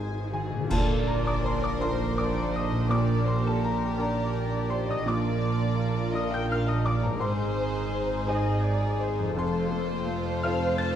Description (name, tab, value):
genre	cinematic, emotional film score for orchestra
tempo	56 BPM (dotted quarters)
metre	6/8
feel	rubato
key	Bb major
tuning	A4 = 437 Hz
part	warm studio violin section	melody	0.0-11.0 s	Ab4 to A5	-36 LUFS	left 3 dB	none
part	warm symphonic violin section	second line	0.0-11.0 s	D4 to C5	-34 LUFS	left 2 dB	none
part	bright baby grand piano	accompaniment	0.0-11.0 s	F2 to A6	-32 LUFS	left 1 dB	none
part	dark symphonic viola section	accompaniment	0.0-11.0 s	Bb3 to Eb5	-35 LUFS	right 2 dB	none
part	concert harp	arpeggios	0.0-11.0 s	F2 to C5	-35 LUFS	left 7 dB	none
part	rich symphonic cello section	bass	0.0-11.0 s	F2 to Bb2	-32 LUFS	right 2 dB	none
part	rich symphonic double bass section	bass	0.0-11.0 s	F1 to Bb1	-31 LUFS	right 3 dB	none
part	clash cymbals and concert bass drum	percussion	0.7-2.1 s	none	-33 LUFS	equal	none
room	moderate scoring stage reverb, RT60 1.9 s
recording	dark, warm production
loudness	-24 LUFS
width	side -10 dB against mid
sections	0.7-11.0 A section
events	band accent 0.7-1.4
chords	0.0 Ab; 0.7 Bb; 7.2 Ab; 9.4 F